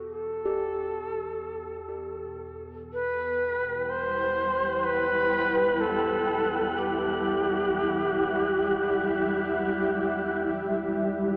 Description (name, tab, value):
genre	dark ambient drone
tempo	free time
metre	none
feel	none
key	E minor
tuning	A4 = 439 Hz
part	gamelan-type bossed gongs	arpeggios	0.0-6.2 s	B2 to A4	-37 LUFS	equal	tape echo
part	deep rumbling drone	drone	0.0-11.4 s	E2 to B2	-47 LUFS	equal	built-in reverb, phaser, subtle chorus
part	bright reedy shakuhachi	melody	0.1-10.0 s	G4 to C5	-30 LUFS	equal	tape echo
part	granular cloud pad	sustained chords	4.1-11.4 s	G3 to E5	-32 LUFS	equal	built-in reverb
part	wind-like tuned noise texture	texture	3.8-11.4 s	G4 to G5	-35 LUFS	equal	built-in reverb
room	wet cathedral reverb, RT60 6.5 s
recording	in a vast, echoing space, AM radio sound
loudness	-27 LUFS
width	mono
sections	0.0-10.5 A section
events	fade-in on shakuhachi 0.0-10.5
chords	0.0 Em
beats	free time